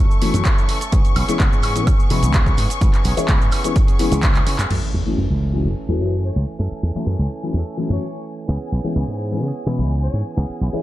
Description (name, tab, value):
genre	filtered disco house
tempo	127 BPM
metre	4/4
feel	straight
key	F# minor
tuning	A4 = 440 Hz
part	rich symphonic string section	sustained chords	0.0-10.8 s	G#5 to C#6	-31 LUFS	left 5 dB	sidechain pumping, low-pass filter
part	direct-recorded clean electric guitar	riff	0.0-10.8 s	E3 to A4	-30 LUFS	right 4 dB	sidechain pumping, low-pass filter
part	slap bass with an envelope filter	bass	0.0-10.8 s	F#1 to C#3	-20 LUFS	equal	sidechain pumping, low-pass filter
part	punchy analog drum machine	drums	0.1-4.8 s	crash cymbal, handclaps, hi-hat, shaker, woodblock	-26 LUFS	right 1 dB	sidechain pumping on hats, sidechain pumping on perc, sidechain pumping on cymbals
part	dark baby grand piano	accompaniment	0.2-10.8 s	E3 to E4	-24 LUFS	left 3 dB	phaser, vintage 12-bit sampler grit, sidechain pumping, low-pass filter
part	maracas	percussion	0.2-10.8 s	none	-38 LUFS	right 4 dB	none
part	electronic kick drum	drums	0.5-4.3 s	none	-16 LUFS	equal	none
part	impact	sound effects	4.7-6.6 s	none	-29 LUFS	equal	none
part	clear trumpet section	melody	6.2-10.2 s	C#5	-36 LUFS	left 5 dB	sidechain pumping, low-pass filter
room	little or no reverb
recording	dark, warm production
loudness	-16 LUFS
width	side -15 dB against mid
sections	0.0-4.7 A section; 4.7-10.8 B section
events	drum fill 4.4-4.7; impact 4.7-6.6; filter sweep 4.7-10.8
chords	0.0 F#m7; 0.9 C#m7; 4.7 F#m7; 8.5 C#m7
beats	0.45 | 0.93 1.40 1.87 2.34 | 2.82 3.29 3.76 4.23 | 4.71 5.18 5.65 6.12 | 6.59 7.07 7.54 8.01 | 8.48 8.96 9.43 9.90 | 10.38